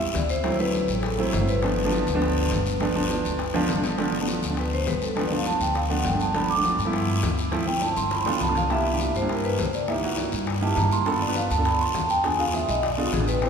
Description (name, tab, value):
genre	Afro-Cuban jazz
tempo	203 BPM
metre	4/4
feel	straight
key	G mixolydian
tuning	A4 = 443 Hz
part	vibraphone with medium mallets	melody	0.0-13.5 s	F4 to D6	-26 LUFS	equal	none
part	warm grand piano	accompaniment	0.0-13.5 s	F3 to A5	-27 LUFS	right 3 dB	none
part	upright bass	bass	0.0-13.5 s	G1 to G2	-28 LUFS	left 1 dB	none
part	bongos	percussion	0.0-13.5 s	none	-32 LUFS	left 5 dB	none
part	guiro	percussion	0.1-13.5 s	none	-34 LUFS	left 5 dB	none
room	wet church reverb, RT60 4.0 s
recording	recorded in a church or concert hall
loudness	-22 LUFS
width	side -6 dB against mid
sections	0.0-4.0 A section; 4.0-13.5 B section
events	grand piano fill 3.4-4.0; drum fill 3.5-4.0, 8.1-8.7; vibraphone solo 4.0-13.5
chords	0.4 D9; 1.6 G9; 7.5 Dm7; 8.1 G9; 8.7 C9; 9.9 C#dim7; 11.1 G9; 12.2 E7b9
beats	0.15 | 0.44 0.74 1.03 1.33 | 1.62 1.92 2.22 2.51 | 2.81 3.10 3.40 3.69 | 3.99 4.28 4.58 4.87 | 5.17 5.46 5.76 6.05 | 6.35 6.64 6.93 7.23 | 7.53 7.82 8.11 8.41 | 8.70 9.00 9.29 9.59 | 9.88 10.18 10.47 10.77 | 11.06 11.36 11.65 11.95 | 12.24 12.54 12.83 13.13 | 13.42